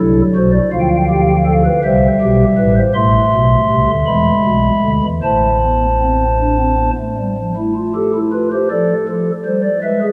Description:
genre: classical, baroque-style 4-part fugue for pipe organ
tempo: 53 BPM (dotted quarters)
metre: 6/8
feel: straight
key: A minor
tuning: A4 = 439 Hz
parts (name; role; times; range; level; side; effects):
- pipe organ, stopped flute; solo; 0.0-10.1 s; A1 to C6; -14 LUFS; equal; none
room: wet cathedral reverb, RT60 4.6 s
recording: none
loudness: -14 LUFS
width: mono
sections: 0.0-7.6 A section; 7.6-10.1 B section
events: none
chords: 0.0 D; 0.7 G7/D; 1.8 C; 3.0 Am; 4.1 E7; 5.2 Am; 8.7 Dm/F

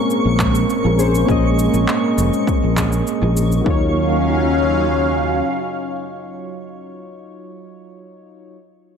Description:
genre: sunset chillout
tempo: 101 BPM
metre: 4/4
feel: straight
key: Eb minor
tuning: A4 = 439 Hz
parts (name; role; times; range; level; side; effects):
- soft electric-piano-like synth keys; accompaniment; 0.0-8.6 s; Gb3 to Eb5; -22 LUFS; moving between left 4 dB and right 4 dB; chorus, auto-pan, tape echo
- lush unison pad; sustained chords; 0.0-6.8 s; Gb3 to F5; -21 LUFS; left 2 dB; chorus, phaser
- twinkling granular texture; texture; 0.0-3.7 s; Db6; -30 LUFS; right 3 dB; built-in reverb
- electronic shaker and handclaps; drums; 0.1-3.6 s; none; -27 LUFS; equal; overdrive, dub echo
- fretless electric bass; bass; 0.2-5.4 s; F1 to Eb2; -18 LUFS; equal; ensemble chorus
- electronic kick drum; drums; 0.4-3.8 s; none; -21 LUFS; equal; overdrive
room: moderate plate reverb, RT60 1.7 s, digital ambience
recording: echo-heavy mix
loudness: -15 LUFS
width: side -7 dB against mid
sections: 0.0-3.7 A section; 3.7-6.0 B section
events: none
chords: 0.0 Bbm9; 3.7 Ebm9

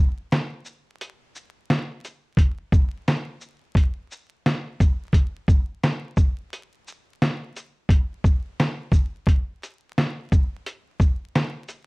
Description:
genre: hip hop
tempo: 87 BPM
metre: 4/4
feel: swing 65% on 16ths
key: none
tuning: none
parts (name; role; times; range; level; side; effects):
- dusty soul sampler-style drum kit; drums; 0.3-11.9 s; hi-hat, kick drum, shaker, snare drum; -19 LUFS; equal; vintage 12-bit sampler grit
room: light reverb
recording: vinyl crackle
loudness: -21 LUFS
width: side -31 dB against mid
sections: 0.0-9.3 A section; 9.3-11.9 B section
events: none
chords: none

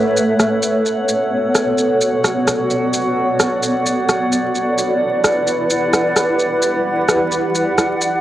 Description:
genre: future garage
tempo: 130 BPM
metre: 4/4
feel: swing 64% on 16ths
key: unclear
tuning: A4 = 442 Hz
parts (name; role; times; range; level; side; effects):
- granular cloud pad; sustained chords; 0.0-8.2 s; A3 to F#5; -16 LUFS; equal; built-in reverb, cassette tape
- drifting glass-harmonics texture; texture; 0.0-8.2 s; F#5; -26 LUFS; right 2 dB; chorus, built-in reverb, cassette tape
- electronic shaker and rim click; drums; 0.2-8.1 s; none; -18 LUFS; equal; small room ambience
room: moderate spring reverb, RT60 2.0 s, digital ambience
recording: home recording on cassette, vinyl crackle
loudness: -14 LUFS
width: side -13 dB against mid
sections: 0.0-8.2 A section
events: none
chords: 0.0 Aadd9; 0.7 Bm7; 4.4 Em7

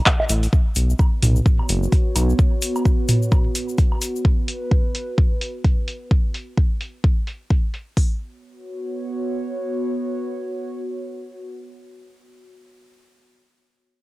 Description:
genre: minimal techno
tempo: 129 BPM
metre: 4/4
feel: swing 59% on 16ths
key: unclear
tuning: A4 = 439 Hz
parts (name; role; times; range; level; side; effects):
- minimal click drum kit; drums; 0.1-8.1 s; hi-hat, kick drum; -17 LUFS; equal; none
- techno drum kit; drums; 0.1-7.8 s; handclaps, hi-hat; -23 LUFS; equal; low-pass filter on hats, low-pass filter on snare, low-pass filter on room
- egg shaker; percussion; 0.1-4.2 s; none; -34 LUFS; left 9 dB; none
- electronic bongos, woodblock and toms; percussion; 0.2-4.0 s; none; -23 LUFS; right 1 dB; none
- round analog bass; bass; 0.3-2.3 s; F#1 to B1; -18 LUFS; equal; tube saturation, sidechain pumping
- warbly tape-like pad; texture; 1.4-12.5 s; B3 to C#5; -28 LUFS; right 1 dB; chorus, built-in reverb, sidechain pumping, cassette tape
room: light reverb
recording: home recording on cassette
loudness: -18 LUFS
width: side -20 dB against mid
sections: 0.5-8.0 A section; 8.0-11.7 B section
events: none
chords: 0.0 N.C.; 0.5 B5

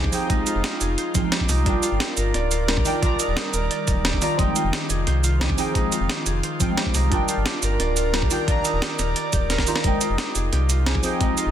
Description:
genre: liquid drum and bass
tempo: 176 BPM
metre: 4/4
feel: straight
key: F dorian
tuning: A4 = 440 Hz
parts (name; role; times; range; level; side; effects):
- deep mellow chord stab; accompaniment; 0.0-11.5 s; Eb3 to Bb5; -27 LUFS; equal; chorus, phaser, cassette tape, tape echo
- airy breathy pad; sustained chords; 0.0-11.5 s; Eb3 to D5; -31 LUFS; left 2 dB; chorus, sidechain pumping
- concert harp; arpeggios; 0.0-11.5 s; D4 to D5; -27 LUFS; right 2 dB; ping-pong delay
- sub bass with octave; bass; 0.0-11.5 s; D1 to D2; -23 LUFS; equal; none
- breakbeat sampler-style drum kit; drums; 0.0-11.4 s; cabasa, hi-hat, snare drum; -26 LUFS; right 2 dB; none
- electronic kick drum; drums; 0.0-11.3 s; none; -24 LUFS; equal; none
room: light reverb, digital ambience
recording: dense, heavily limited modern master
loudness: -19 LUFS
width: side -10 dB against mid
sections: 0.0-11.5 A section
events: drum fill 9.5-9.8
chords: 0.0 Fm9; 1.7 Gm7; 2.9 Ebmaj7; 4.4 Fm9; 7.1 Gm7; 8.3 Ebmaj7; 9.8 Fm9

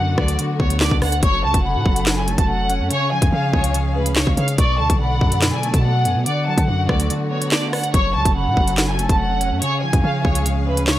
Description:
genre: hip hop, drill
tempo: 143 BPM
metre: 4/4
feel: half-time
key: F# harmonic minor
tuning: A4 = 440 Hz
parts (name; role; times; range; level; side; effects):
- bright studio violin section; melody; 0.0-11.0 s; B4 to A5; -23 LUFS; equal; low-pass filter, tape echo
- concert flute; second line; 0.0-10.8 s; F#5 to C#6; -28 LUFS; left 3 dB; tape echo
- mellow electric guitar; accompaniment; 0.0-11.0 s; F#2 to C#5; -24 LUFS; right 1 dB; lush chorus, low-pass filter
- warm symphonic string section; sustained chords; 0.0-11.0 s; D3 to E#5; -31 LUFS; left 2 dB; none
- long sustained 808-style bass; bass; 0.0-11.0 s; E#1 to D3; -22 LUFS; equal; none
- drill drum kit; drums; 0.2-11.0 s; handclaps, hi-hat, kick drum, rim click, snare drum; -19 LUFS; equal; none
room: small room ambience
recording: dry, gritty hardware recording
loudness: -16 LUFS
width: side -14 dB against mid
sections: 0.0-7.9 A section; 7.9-11.0 A section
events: break 7.1-7.9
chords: 0.0 D6; 1.2 F#m; 2.9 C#; 4.6 Bm7; 6.3 D6; 7.9 F#m; 9.6 C#

